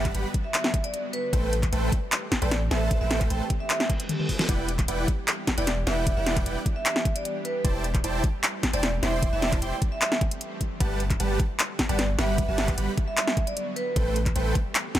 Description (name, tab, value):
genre	future bass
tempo	152 BPM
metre	4/4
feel	half-time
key	G major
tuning	A4 = 440 Hz
part	shimmering ambient pad	sustained chords	0.1-15.0 s	D3 to G4	-38 LUFS	right 1 dB	chorus, built-in reverb, sidechain pumping
part	dense compressed supersaw	riff	0.0-14.6 s	G3 to C6	-32 LUFS	right 1 dB	sidechain pumping
part	long sustained 808-style bass	bass	0.0-14.5 s	E1 to A1	-28 LUFS	equal	sidechain pumping
part	electronic kick drum	drums	0.1-15.0 s	none	-27 LUFS	equal	overdrive
part	pop drum kit	drums	0.1-15.0 s	handclaps, hi-hat, snare drum, toms	-27 LUFS	equal	overdrive
part	vibraphone with hard mallets	melody	0.4-14.2 s	B4 to G5	-32 LUFS	right 2 dB	sidechain pumping, digital delay
part	reverse cymbal	sound effects	3.9-4.5 s	none	-37 LUFS	right 1 dB	none
room	little or no reverb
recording	none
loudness	-23 LUFS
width	side -12 dB against mid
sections	0.0-15.0 A section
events	reverse cymbal 3.9-4.5; drum fill 4.1-4.5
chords	0.0 Gmaj7; 1.1 Am7; 4.5 Em7; 7.6 C6/E; 10.8 Gmaj7; 13.8 Am7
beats	0.15 0.54 0.94 | 1.33 1.73 2.12 2.51 | 2.91 3.30 3.70 4.09 | 4.49 4.88 5.28 5.67 | 6.07 6.46 6.86 7.25 | 7.65 8.04 8.44 8.83 | 9.22 9.62 10.01 10.41 | 10.80 11.20 11.59 11.99 | 12.38 12.78 13.17 13.57 | 13.96 14.36 14.75